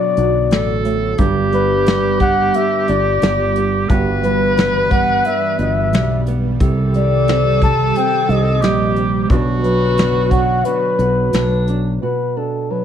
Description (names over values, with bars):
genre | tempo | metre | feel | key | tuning
acoustic folk-pop ballad | 89 BPM | 4/4 | straight | unclear | A4 = 438 Hz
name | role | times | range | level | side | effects
breathy flugelhorn | melody | 0.0-12.8 s | A4 to A5 | -18 LUFS | left 4 dB | plate reverb
bright clarinet | second line | 0.0-12.0 s | D4 to B4 | -21 LUFS | right 2 dB | none
nylon-string guitar | accompaniment | 0.0-12.8 s | G2 to B4 | -21 LUFS | right 6 dB | none
airy breathy pad | sustained chords | 0.0-12.0 s | D3 to G4 | -26 LUFS | equal | chorus
fingered electric bass | bass | 0.2-12.0 s | G1 to C2 | -19 LUFS | equal | none
soft brush drum kit | drums | 0.2-11.8 s | hi-hat, kick drum, snare drum | -19 LUFS | equal | none
room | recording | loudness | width
moderate studio reverb, RT60 0.7 s | none | -13 LUFS | side -9 dB against mid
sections
0.0-12.0 A section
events
none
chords
0.0 Bm; 1.2 G; 3.9 Emadd9/G; 6.6 Cm; 9.3 Bm